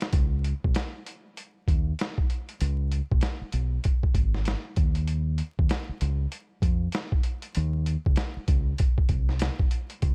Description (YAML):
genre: hip hop, jazz-hop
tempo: 97 BPM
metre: 4/4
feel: swing 60% on 16ths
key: unclear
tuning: A4 = 440 Hz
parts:
  - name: boom bap sampler-style drum kit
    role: drums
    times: 0.0-10.1 s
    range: hi-hat, kick drum, snare drum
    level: -28 LUFS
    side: equal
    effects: vintage 12-bit sampler grit
  - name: deep dub fingered electric bass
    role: bass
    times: 0.1-10.1 s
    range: G#1 to E#2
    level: -28 LUFS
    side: equal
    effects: none
room: little or no reverb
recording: vinyl crackle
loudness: -27 LUFS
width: mono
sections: 0.1-10.0 A section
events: none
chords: none